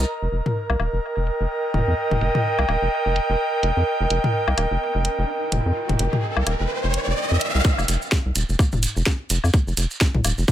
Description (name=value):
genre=minimal techno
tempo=127 BPM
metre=4/4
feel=swing 58% on 16ths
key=unclear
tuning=A4 = 442 Hz
part: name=rubbery square bass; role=bass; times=0.0-10.4 s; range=Eb1 to F2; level=-22 LUFS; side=equal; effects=sidechain pumping
part: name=airy breathy pad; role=texture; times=0.0-7.6 s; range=Bb4 to Bb5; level=-24 LUFS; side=right 2 dB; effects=chorus, sidechain pumping
part: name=garage drum kit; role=drums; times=0.3-10.4 s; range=hi-hat, snare drum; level=-24 LUFS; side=right 1 dB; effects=overdrive, low-pass filter on hats, low-pass filter on snare
part: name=electronic toms and woodblock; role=percussion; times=0.5-10.4 s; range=none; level=-26 LUFS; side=left 2 dB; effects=none
part: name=riser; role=sound effects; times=5.1-7.6 s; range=none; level=-27 LUFS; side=equal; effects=none
part: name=electronic kick drum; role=drums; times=7.6-10.5 s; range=none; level=-18 LUFS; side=equal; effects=overdrive
part: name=maracas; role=percussion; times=7.6-10.5 s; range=none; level=-30 LUFS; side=right 3 dB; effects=none
room=moderate studio reverb, RT60 0.6 s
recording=none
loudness=-19 LUFS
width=side -11 dB against mid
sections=0.1-7.6 A section; 7.6-10.5 B section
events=filter sweep on drum 0.1-7.6; riser 5.1-7.6; drop 7.6-10.5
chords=0.1 F5